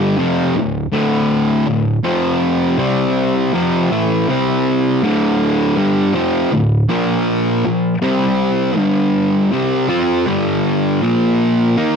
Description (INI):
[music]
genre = metal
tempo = 80 BPM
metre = 4/4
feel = straight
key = D minor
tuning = A4 = 440 Hz
[part]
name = fuzz guitar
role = solo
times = 0.0-12.0 s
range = D2 to F4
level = -14 LUFS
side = equal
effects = distortion
[sound]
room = digital ambience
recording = dry, close 1970s-style studio recording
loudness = -14 LUFS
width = side -6 dB against mid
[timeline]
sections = 0.0-12.0 A section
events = none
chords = 0.0 Dm; 2.0 F5; 2.8 C5; 3.5 Fmaj7; 4.3 C5; 5.0 Dm; 6.9 Bb5; 8.0 C5; 8.8 G5; 9.5 Csus4; 10.3 G5; 11.0 Bb5